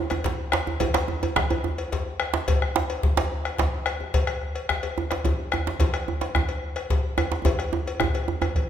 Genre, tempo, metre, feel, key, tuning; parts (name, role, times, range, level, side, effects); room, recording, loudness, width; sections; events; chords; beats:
west african traditional, West African drum ensemble; 144 BPM (dotted quarters); 12/8; straight
bombo; percussion; 0.1-8.7 s; -27 LUFS; equal
cowbell; percussion; 0.1-8.7 s; -32 LUFS; left 5 dB
djembe; percussion; 0.1-8.5 s; -27 LUFS; right 4 dB
djembe; percussion; 0.2-8.7 s; -30 LUFS; left 3 dB
wet recital hall reverb, RT60 1.7 s; minimal, uncompressed stereo recording; -23 LUFS; side -9 dB against mid
0.0-8.7 A section
drum fill 7.5-8.7
0.39 | 0.81 1.22 1.64 2.06 | 2.48 2.89 3.31 3.73 | 4.14 4.56 4.97 5.39 | 5.80 6.22 6.63 7.05 | 7.46 7.87 8.29